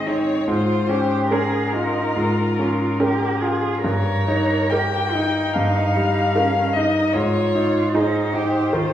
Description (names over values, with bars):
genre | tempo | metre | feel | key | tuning
classical, slow romantic movement for piano quartet | 65-76 BPM | 4/4 | rubato | unclear | A4 = 444 Hz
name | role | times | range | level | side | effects
warm violin | melody | 0.0-8.9 s | Bb4 to G5 | -24 LUFS | left 4 dB | none
warm cello | second line | 0.0-8.9 s | C4 to Bb4 | -24 LUFS | right 3 dB | none
bright grand piano | accompaniment | 0.0-8.9 s | G2 to Bb4 | -20 LUFS | equal | none
rich viola | accompaniment | 0.0-8.5 s | C4 to Eb4 | -29 LUFS | right 2 dB | none
room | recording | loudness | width
wet recital hall reverb, RT60 1.5 s | recorded in a church or concert hall | -18 LUFS | side -11 dB against mid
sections
0.0-8.9 A section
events
none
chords
0.5 Bbm7/Ab; 3.8 Eb7/G; 7.2 Ab